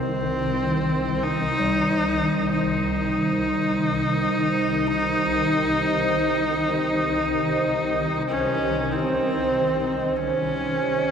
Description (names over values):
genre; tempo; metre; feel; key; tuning
dark ambient drone; 47 BPM; 4/4; straight; C phrygian; A4 = 440 Hz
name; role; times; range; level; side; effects
clear horsehead fiddle; melody; 0.0-11.1 s; C4 to Eb4; -24 LUFS; left 1 dB; ping-pong delay
dark analog pad; sustained chords; 1.2-11.1 s; Eb4 to Eb5; -27 LUFS; right 2 dB; chorus, phaser
swarming drone; drone; 0.0-11.1 s; C2 to Eb3; -27 LUFS; equal; built-in reverb
bubbling stepped-filter texture; texture; 0.0-10.2 s; C5; -40 LUFS; right 4 dB; none
gamelan-type bronze metallophone; arpeggios; 0.6-9.3 s; Eb3 to G3; -29 LUFS; left 1 dB; ping-pong delay
room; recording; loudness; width
wet cathedral reverb, RT60 5.2 s; none; -20 LUFS; side -7 dB against mid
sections
0.0-10.2 A section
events
filter sweep on synth drone 0.0-10.2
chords
0.0 Cm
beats
1.25 2.52 3.80 | 5.08 6.35 7.63 8.91 | 10.18